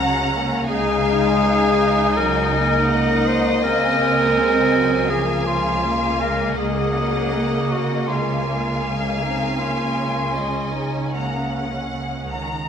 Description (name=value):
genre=cinematic, emotional film score for orchestra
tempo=81 BPM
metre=4/4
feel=rubato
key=Db major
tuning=A4 = 436 Hz
part: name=rich studio violin section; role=melody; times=0.0-12.7 s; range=Gb5 to Bb5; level=-28 LUFS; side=left 2 dB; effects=none
part: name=rich studio violin section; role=second line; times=0.0-12.5 s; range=Eb5 to Gb5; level=-26 LUFS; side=left 2 dB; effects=none
part: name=rich studio viola section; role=accompaniment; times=0.0-12.5 s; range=Bb3 to Eb4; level=-26 LUFS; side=right 2 dB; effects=none
part: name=warm French horn section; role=sustained chords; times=0.0-12.3 s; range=F3 to C4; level=-24 LUFS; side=left 2 dB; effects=none
part: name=warm studio cello section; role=bass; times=0.0-12.7 s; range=Db3 to Eb3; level=-28 LUFS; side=right 3 dB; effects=none
part: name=warm studio double bass section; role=bass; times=0.0-12.5 s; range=Db2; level=-28 LUFS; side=right 4 dB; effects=none
part: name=clear clarinet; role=second line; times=0.7-11.9 s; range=Db4 to C5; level=-22 LUFS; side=equal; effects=none
room=wet scoring stage reverb, RT60 1.5 s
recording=none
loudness=-17 LUFS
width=side -8 dB against mid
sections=0.0-12.7 A section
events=none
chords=0.0 Gb/Db; 0.7 Dbadd9; 2.2 Ebm/Db; 3.6 Ab/Db; 5.1 Bbm7/Db; 6.6 Ebm/Db; 8.1 Bbm7/Db; 9.6 Dbadd9; 11.1 Gb/Db